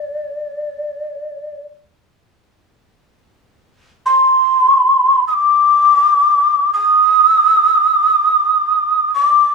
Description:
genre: japanese traditional, Japanese chamber music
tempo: free time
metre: none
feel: none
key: unclear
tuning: A4 = 440 Hz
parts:
  - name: breathy mellow shakuhachi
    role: solo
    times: 0.0-9.5 s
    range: D5 to Eb6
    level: -11 LUFS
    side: equal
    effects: none
room: light reverb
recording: small room ambience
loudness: -10 LUFS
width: side -4 dB against mid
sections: 0.0-2.7 A section; 2.7-9.5 A section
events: none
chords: none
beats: free time

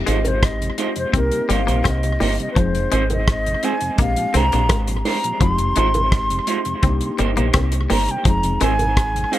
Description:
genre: lovers rock reggae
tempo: 84 BPM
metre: 4/4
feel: straight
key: F dorian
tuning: A4 = 445 Hz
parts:
  - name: tine electric piano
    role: accompaniment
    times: 0.0-9.4 s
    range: Ab3 to Ab4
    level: -28 LUFS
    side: left 3 dB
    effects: medium stereo tremolo
  - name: deep dub fingered electric bass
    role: bass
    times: 0.0-9.2 s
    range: F1 to C2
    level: -21 LUFS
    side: equal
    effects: none
  - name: breathy mellow silver concert flute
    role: melody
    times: 0.1-9.4 s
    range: Bb4 to C6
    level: -23 LUFS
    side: equal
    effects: tape echo
  - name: mellow tonewheel organ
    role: accompaniment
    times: 0.1-9.4 s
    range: F2 to G4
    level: -30 LUFS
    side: right 2 dB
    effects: slow rotary speaker
  - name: twangy electric guitar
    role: riff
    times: 0.1-8.8 s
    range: F3 to C4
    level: -26 LUFS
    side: left 7 dB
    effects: none
  - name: electric guitar through a small old amp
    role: stabs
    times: 0.1-9.4 s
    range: Ab3 to C5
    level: -26 LUFS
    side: right 6 dB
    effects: tape echo
  - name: damped 70s drum kit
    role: drums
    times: 0.1-9.4 s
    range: hi-hat, kick drum, rim click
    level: -21 LUFS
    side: equal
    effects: none
  - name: bongos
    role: percussion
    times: 0.1-9.0 s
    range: none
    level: -29 LUFS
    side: right 3 dB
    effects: none
room: light reverb, small room ambience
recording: none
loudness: -16 LUFS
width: side -14 dB against mid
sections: 0.0-9.4 A section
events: flute solo 0.0-9.4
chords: 0.0 Fm7; 1.1 Cm7; 2.6 Fm7; 4.0 Bb13; 5.4 Fm7; 6.8 Cm7; 8.3 Fm7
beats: 0.42 1.14 1.85 | 2.56 3.27 3.99 4.70 | 5.41 6.12 6.83 7.55 | 8.26 8.97

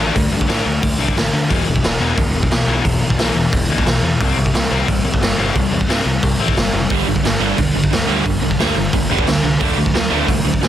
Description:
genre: punk rock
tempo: 178 BPM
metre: 4/4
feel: straight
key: E minor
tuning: A4 = 440 Hz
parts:
  - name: sludgy distorted guitar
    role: riff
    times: 0.0-10.7 s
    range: E2 to D4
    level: -20 LUFS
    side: left 5 dB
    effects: overdrive
  - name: growling picked electric bass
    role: bass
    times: 0.0-10.7 s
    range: E1 to D3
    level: -22 LUFS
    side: right 1 dB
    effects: overdrive
  - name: raw garage drum kit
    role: drums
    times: 0.2-10.7 s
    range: hi-hat, kick drum, snare drum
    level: -17 LUFS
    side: right 1 dB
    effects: none
  - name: distorted electric guitar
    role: riff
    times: 6.9-10.7 s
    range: G2 to A3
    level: -20 LUFS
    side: right 17 dB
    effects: distortion
room: little or no reverb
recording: dense, heavily limited modern master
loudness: -14 LUFS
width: side -11 dB against mid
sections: 0.0-10.7 A section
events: none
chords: 0.0 D5; 1.5 E5; 4.2 C5; 6.9 G5; 9.6 D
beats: | 0.15 0.49 0.83 1.17 | 1.50 1.84 2.18 2.52 | 2.85 3.19 3.53 3.87 | 4.21 4.54 4.88 5.22 | 5.55 5.89 6.23 6.57 | 6.91 7.24 7.58 7.92 | 8.25 8.59 8.93 9.27 | 9.60 9.94 10.28 10.62

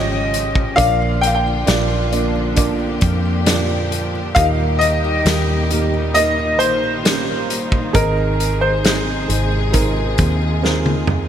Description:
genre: pop ballad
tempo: 67 BPM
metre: 4/4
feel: straight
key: Ab major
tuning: A4 = 440 Hz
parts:
  - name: clear grand piano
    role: melody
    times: 0.0-10.4 s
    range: Bb4 to G5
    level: -19 LUFS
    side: left 1 dB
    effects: analog chorus
  - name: dark upright piano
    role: accompaniment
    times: 0.0-11.3 s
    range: Ab2 to Eb5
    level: -24 LUFS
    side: right 5 dB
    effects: none
  - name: rich studio string section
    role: sustained chords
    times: 0.0-11.3 s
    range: Ab2 to Ab4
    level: -25 LUFS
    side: left 1 dB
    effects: none
  - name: picked steel-string acoustic guitar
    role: arpeggios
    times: 0.0-11.3 s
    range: Ab2 to Ab4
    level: -28 LUFS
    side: left 7 dB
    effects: analog chorus
  - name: vintage muted fingered electric bass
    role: bass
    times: 0.0-11.3 s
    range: Ab1 to F2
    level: -20 LUFS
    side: equal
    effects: none
  - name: loose indie drum kit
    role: drums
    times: 0.3-11.3 s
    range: hi-hat, kick drum, snare drum, toms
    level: -19 LUFS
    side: equal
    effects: none
room: light reverb, small room ambience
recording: bright 1980s-style digital production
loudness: -15 LUFS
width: side -9 dB against mid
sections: 0.0-11.3 A section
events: drum fill 10.6-11.3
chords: 0.0 Db; 0.8 Bb; 4.4 Eb; 7.9 Ab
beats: | 0.78 1.68 2.58 3.47 | 4.37 5.26 6.16 7.05 | 7.95 8.84 9.74 10.63

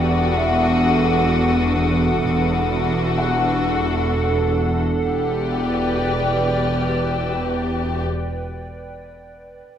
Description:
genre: cinematic, suspense film score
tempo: 64 BPM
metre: 3/4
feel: straight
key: E minor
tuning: A4 = 440 Hz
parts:
  - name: rich chamber violin section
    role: melody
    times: 0.0-8.0 s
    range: F#4 to G4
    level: -25 LUFS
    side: left 6 dB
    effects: none
  - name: evolving wavetable pad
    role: sustained chords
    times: 0.0-8.0 s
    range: D4 to G5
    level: -24 LUFS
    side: right 2 dB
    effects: chorus, built-in reverb
  - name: clear chamber double bass section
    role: bass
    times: 0.0-8.0 s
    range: E1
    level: -25 LUFS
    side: right 1 dB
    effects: none
  - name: rich symphonic cello section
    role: bass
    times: 0.0-8.0 s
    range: E2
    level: -22 LUFS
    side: right 1 dB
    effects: none
  - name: clear grand piano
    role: texture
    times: 0.0-5.1 s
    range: A4 to A5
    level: -30 LUFS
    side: left 1 dB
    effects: none
  - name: rich chamber violin section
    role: texture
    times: 0.0-7.4 s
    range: B5 to F6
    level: -34 LUFS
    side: left 4 dB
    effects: none
room: wet scoring stage reverb, RT60 2.0 s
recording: dark, warm production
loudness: -17 LUFS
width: side -9 dB against mid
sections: 0.0-5.1 A section; 5.1-7.9 B section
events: none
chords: 0.0 D/E; 5.1 Em7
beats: 0.37 1.31 | 2.25 3.18 4.12 | 5.06 6.00 6.93

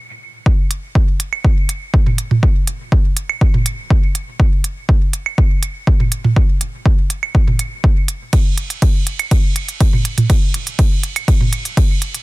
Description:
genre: techno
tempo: 122 BPM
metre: 4/4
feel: straight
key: none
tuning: none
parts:
  - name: electronic kick drum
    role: drums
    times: 0.5-11.9 s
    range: none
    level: -13 LUFS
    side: equal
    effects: none
  - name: deep house drum kit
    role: drums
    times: 0.7-12.2 s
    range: hi-hat, ride cymbal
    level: -22 LUFS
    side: right 3 dB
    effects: none
  - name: electronic claves and toms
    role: percussion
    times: 1.3-11.5 s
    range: none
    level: -21 LUFS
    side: right 3 dB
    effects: sidechain pumping on perc, sidechain pumping on toms, dub echo
room: little or no reverb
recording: dense, heavily limited modern master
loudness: -13 LUFS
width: side -20 dB against mid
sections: 0.5-12.2 A section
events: stop 0.0-0.5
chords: none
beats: | 0.46 0.95 1.45 1.94 | 2.43 2.92 3.41 3.90 | 4.40 4.89 5.38 5.87 | 6.36 6.86 7.35 7.84 | 8.33 8.82 9.31 9.81 | 10.30 10.79 11.28 11.77

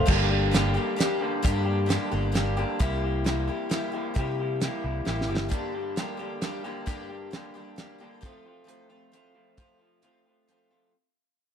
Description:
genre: folk rock and heartland rock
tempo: 133 BPM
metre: 3/4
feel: straight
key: G dorian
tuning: A4 = 442 Hz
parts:
  - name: picked twelve-string acoustic guitar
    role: accompaniment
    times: 0.0-10.9 s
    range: G2 to A4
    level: -33 LUFS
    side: left 6 dB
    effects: none
  - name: electric guitar through a small old amp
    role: riff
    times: 0.0-10.9 s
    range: F2 to G4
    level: -31 LUFS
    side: equal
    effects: none
  - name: fingered electric bass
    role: bass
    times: 0.0-5.5 s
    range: G1 to C3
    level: -28 LUFS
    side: equal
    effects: none
  - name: damped 70s drum kit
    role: drums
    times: 0.1-10.6 s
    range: crash cymbal, hi-hat, kick drum, snare drum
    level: -28 LUFS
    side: right 1 dB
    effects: none
room: light reverb, studio reverb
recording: dark, warm production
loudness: -25 LUFS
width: side -8 dB against mid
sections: 0.1-10.9 A section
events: fade-out 0.1-10.9; drum fill 5.1-5.5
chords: 0.1 Gm; 2.8 C7; 5.5 Gm; 8.2 F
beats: | 0.08 0.53 0.98 | 1.44 1.89 2.34 | 2.79 3.25 3.70 | 4.15 4.60 5.05 | 5.51 5.96 6.41 | 6.86 7.32 7.77 | 8.22 8.67 9.12 | 9.57 10.03 10.48

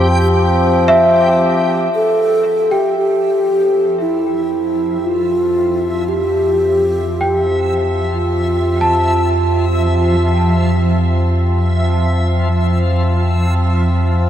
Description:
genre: ambient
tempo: 58 BPM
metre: 4/4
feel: straight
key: F major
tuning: A4 = 440 Hz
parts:
  - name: deep rumbling drone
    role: bass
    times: 0.0-14.3 s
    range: F2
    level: -17 LUFS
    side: equal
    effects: built-in reverb
  - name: hand-pumped harmonium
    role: drone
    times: 0.0-14.3 s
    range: F3 to C4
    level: -21 LUFS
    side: left 1 dB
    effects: none
  - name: backwards swelling texture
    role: texture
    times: 0.0-14.3 s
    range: F3 to G5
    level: -22 LUFS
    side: right 1 dB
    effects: built-in reverb
  - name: worn celesta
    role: arpeggios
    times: 0.9-14.3 s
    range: E5 to A5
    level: -19 LUFS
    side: equal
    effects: tape echo
  - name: breathy mellow alto flute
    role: melody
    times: 1.9-9.7 s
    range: E4 to A4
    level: -16 LUFS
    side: equal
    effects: tape echo
room: wet huge ambient reverb, RT60 7.9 s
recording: in a vast, echoing space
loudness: -12 LUFS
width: side -10 dB against mid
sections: 0.0-1.9 A section; 1.9-14.3 B section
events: fade-in on synth drone 1.9-14.3; fade-in on harmonium 1.9-14.3; fade-in on synth texture 1.9-14.3; fade-out on celesta 1.9-14.3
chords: 0.0 Fmaj7sus2; 1.9 Fmaj9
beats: 0.90 | 1.94 2.97 4.00 5.04 | 6.07 7.11 8.14 9.18 | 10.21 11.24 12.28 13.31

